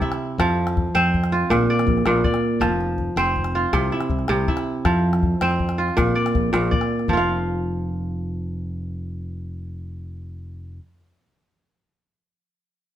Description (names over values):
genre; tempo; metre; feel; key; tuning
west african traditional, West African string and xylophone music; 107 BPM (dotted quarters); 12/8; straight; unclear; A4 = 441 Hz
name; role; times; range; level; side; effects
kora; arpeggios; 0.0-10.9 s; Bb2 to F5; -21 LUFS; right 1 dB; none
calabash; percussion; 0.0-7.3 s; none; -26 LUFS; left 2 dB; none
fingered electric bass; bass; 0.4-10.8 s; F1 to F2; -26 LUFS; equal; none
room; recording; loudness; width
moderate stone room reverb, RT60 1.0 s; band playing live in one room; -19 LUFS; side -11 dB against mid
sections
0.0-7.1 A section; 7.1-9.3 B section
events
none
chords
0.4 F5; 1.5 Bb; 2.6 F5; 3.7 C; 4.8 F5; 6.0 Bb; 7.1 N.C.